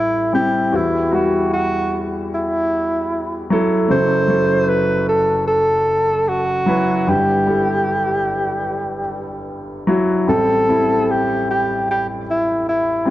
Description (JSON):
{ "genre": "pop ballad", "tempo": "75 BPM", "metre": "4/4", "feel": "straight", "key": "E minor", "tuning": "A4 = 441 Hz", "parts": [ { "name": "warm alto saxophone", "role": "melody", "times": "0.0-13.1 s", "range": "E4 to C5", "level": "-18 LUFS", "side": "equal", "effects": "none" }, { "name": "clear baby grand piano", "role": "accompaniment", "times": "0.0-13.1 s", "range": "F#1 to B4", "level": "-19 LUFS", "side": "equal", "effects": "none" } ], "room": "moderate lush hall reverb, RT60 2.4 s", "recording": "worn, warbling old tape, cassette tape, warbly pitch drift", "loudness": "-15 LUFS", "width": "side -14 dB against mid", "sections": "0.0-13.1 A section", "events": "none", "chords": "0.0 Am7; 0.7 Emadd9; 3.9 F#m7b5; 7.1 Emadd9/G; 10.3 Am7", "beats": "| 0.73 1.53 2.32 3.12 | 3.91 4.70 5.49 6.28 | 7.08 7.87 8.67 9.47 | 10.28 11.08 11.88 12.67" }